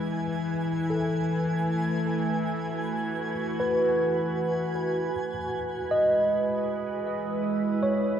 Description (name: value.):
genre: ambient.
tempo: 78 BPM.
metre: 3/4.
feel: straight.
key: E major.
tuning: A4 = 440 Hz.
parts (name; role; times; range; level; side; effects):
glassy FM pad; sustained chords; 0.0-8.2 s; G#3 to B4; -30 LUFS; right 2 dB; ensemble chorus, built-in reverb, shimmer reverb.
tine electric piano; arpeggios; 0.0-8.2 s; G#4 to D#5; -29 LUFS; equal; tape echo, shimmer reverb.
bowed-like drone; drone; 0.0-8.2 s; E3 to E4; -31 LUFS; left 2 dB; built-in reverb.
twinkling granular texture; texture; 0.0-5.2 s; G#5; -36 LUFS; right 2 dB; built-in reverb, shimmer reverb.
room: wet lush hall reverb, RT60 2.9 s.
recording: worn, warbling old tape, cassette tape, warbly pitch drift.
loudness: -25 LUFS.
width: side -9 dB against mid.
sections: 0.0-5.1 A section; 5.1-8.2 A section.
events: fade-in on synth texture 0.0-5.1.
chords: 0.0 Emaj7; 0.5 B5; 5.1 Emaj7.